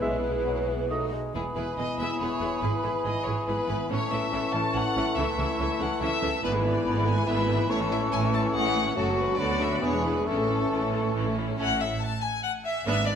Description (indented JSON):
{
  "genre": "quick classical-period movement for symphony orchestra",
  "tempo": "141 BPM",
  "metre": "3/4",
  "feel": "rubato",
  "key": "E major, A major from 6.4 s",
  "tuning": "A4 = 441 Hz",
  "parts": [
    { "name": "rich chamber violin section", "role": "melody", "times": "0.0-13.1 s", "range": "F#4 to A5", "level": "-33 LUFS", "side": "left 4 dB", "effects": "none" },
    { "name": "hollow concert flute", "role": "second line", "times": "0.0-11.3 s", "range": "B4 to C#6", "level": "-34 LUFS", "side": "left 1 dB", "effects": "none" },
    { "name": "mellow cor anglais", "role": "second line", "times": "0.0-11.4 s", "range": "F#4 to E5", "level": "-34 LUFS", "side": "right 1 dB", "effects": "none" },
    { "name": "rich chamber violin section", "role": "second line", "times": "0.0-13.2 s", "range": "A3 to A5", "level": "-34 LUFS", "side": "left 4 dB", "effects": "none" },
    { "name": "warm clarinet", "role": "second line", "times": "0.0-11.3 s", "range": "C#4 to G#4", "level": "-36 LUFS", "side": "left 3 dB", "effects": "none" },
    { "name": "rich chamber viola section", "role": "accompaniment", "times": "0.0-13.1 s", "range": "D3 to E4", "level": "-34 LUFS", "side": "right 2 dB", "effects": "none" },
    { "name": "warm bassoon", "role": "accompaniment", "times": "0.0-11.3 s", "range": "E3 to A3", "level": "-35 LUFS", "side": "right 2 dB", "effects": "none" },
    { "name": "warm French horn section", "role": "sustained chords", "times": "0.0-11.4 s", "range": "F#3 to A4", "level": "-34 LUFS", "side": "left 4 dB", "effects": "none" },
    { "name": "rich studio double bass section", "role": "bass", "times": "0.0-13.2 s", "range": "E1 to D2", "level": "-33 LUFS", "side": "right 3 dB", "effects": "none" },
    { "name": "rich symphonic cello section", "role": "bass", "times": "0.0-13.2 s", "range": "D2 to C#3", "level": "-34 LUFS", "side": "right 3 dB", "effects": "none" }
  ],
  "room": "wet scoring stage reverb, RT60 1.9 s",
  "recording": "none",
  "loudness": "-24 LUFS",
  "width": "side -8 dB against mid",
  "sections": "0.0-1.4 A section; 1.4-11.6 B section; 11.6-13.2 A section",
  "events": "none",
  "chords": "0.0 E/B; 0.9 B; 1.4 E; 2.6 E/G#; 3.9 A; 5.2 A/C#; 6.4 E7/G#; 7.7 A; 9.0 F#m; 9.4 Bm/D; 9.8 E7; 10.3 A",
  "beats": "| 0.01 0.46 0.91 | 1.35 1.78 2.20 | 2.63 3.06 3.48 | 3.91 4.33 4.75 | 5.17 5.59 6.01 | 6.43 6.85 7.27 | 7.69 8.12 8.54 | 8.96 9.39 9.82 | 10.26 10.70 11.14 | 11.58 12.02 12.44 | 12.87"
}